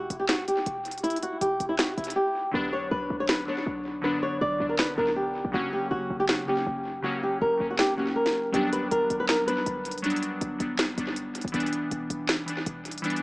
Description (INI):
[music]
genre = hip hop, trap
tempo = 160 BPM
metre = 4/4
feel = half-time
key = B harmonic minor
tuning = A4 = 440 Hz
[part]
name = flamenco guitar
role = melody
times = 0.0-10.0 s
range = E4 to D5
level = -27 LUFS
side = equal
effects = analog delay
[part]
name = short 808-style bass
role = bass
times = 0.0-13.0 s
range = E1 to F#2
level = -36 LUFS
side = equal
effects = none
[part]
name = trap drum kit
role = drums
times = 0.1-13.2 s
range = handclaps, hi-hat, snare drum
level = -29 LUFS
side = equal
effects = analog delay
[part]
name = glassy digital keys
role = accompaniment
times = 2.5-13.2 s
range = C#3 to D4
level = -30 LUFS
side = left 1 dB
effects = chorus
[sound]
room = moderate spring reverb, RT60 2.7 s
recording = echo-heavy mix, small speaker sound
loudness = -25 LUFS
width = side -23 dB against mid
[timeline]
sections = 0.0-13.2 A section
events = drums muted 2.2-2.5; hi-hats muted 2.5-8.5; kick muted 7.8-8.5, 13.0; break 10.0-13.2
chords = 0.0 Em; 2.5 Bm; 5.5 F#; 8.5 Gmaj7; 11.5 Em7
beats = 0.29 0.67 | 1.04 1.42 1.79 2.17 | 2.54 2.92 3.29 3.67 | 4.04 4.42 4.79 5.17 | 5.54 5.92 6.29 6.67 | 7.04 7.42 7.79 8.16 | 8.54 8.91 9.29 9.66 | 10.04 10.41 10.79 11.16 | 11.54 11.91 12.29 12.66 | 13.04